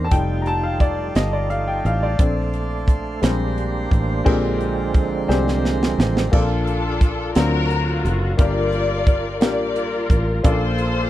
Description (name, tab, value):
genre	slow gospel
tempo	58 BPM (dotted quarters)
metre	6/8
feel	straight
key	Bb major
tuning	A4 = 438 Hz
part	clear upright piano	accompaniment	0.0-11.1 s	G2 to Bb5	-24 LUFS	left 3 dB	none
part	chamber organ, principal chorus	sustained chords	0.0-6.3 s	D5 to C6	-35 LUFS	equal	none
part	tonewheel organ	sustained chords	0.0-6.3 s	D3 to C5	-26 LUFS	right 5 dB	overdrive, chorus vibrato, stopped rotary speaker
part	fingered electric bass	bass	0.0-11.1 s	F1 to D2	-23 LUFS	equal	none
part	crisp fusion drum kit	drums	0.1-10.9 s	crash cymbal, hi-hat, kick drum, snare drum	-17 LUFS	equal	none
part	rich studio string section	melody	6.3-11.1 s	D4 to D5	-23 LUFS	left 2 dB	none
room	little or no reverb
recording	dry, close 1970s-style studio recording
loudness	-17 LUFS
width	side -14 dB against mid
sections	0.0-4.3 A section; 4.3-6.3 B section; 6.3-11.1 C section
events	upright piano solo 0.0-4.3; tonewheel organ solo 4.3-6.3; drum fill 5.3-6.3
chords	0.1 F9; 2.2 Bbmaj9; 3.2 Bb13; 6.3 Bbmaj7; 7.4 D7alt; 8.4 Gm7; 10.5 Bbmaj7